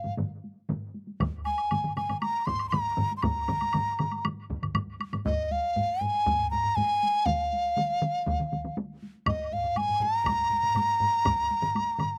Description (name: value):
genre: japanese traditional, taiko drum ensemble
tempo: 119 BPM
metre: 4/4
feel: straight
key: Bb suspended pentatonic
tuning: A4 = 440 Hz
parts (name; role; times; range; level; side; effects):
- mellow hollow large dizi; melody; 0.0-12.2 s; Eb5 to C6; -29 LUFS; equal; none
- solo taiko drums; percussion; 0.1-12.2 s; none; -40 LUFS; equal; none
- taiko ensemble; percussion; 0.1-12.1 s; none; -38 LUFS; equal; none
- taiko ensemble; percussion; 0.1-12.1 s; none; -37 LUFS; equal; none
- taiko ensemble; percussion; 1.2-11.4 s; none; -37 LUFS; equal; none
- woodblock; percussion; 1.2-5.3, 9.3-12.1 s; none; -36 LUFS; equal; slapback echo
room: little or no reverb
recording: recorded outdoors, with no room sound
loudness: -28 LUFS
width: mono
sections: 0.0-5.3 A section; 5.3-12.2 B section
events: speeding up 0.0-12.2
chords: none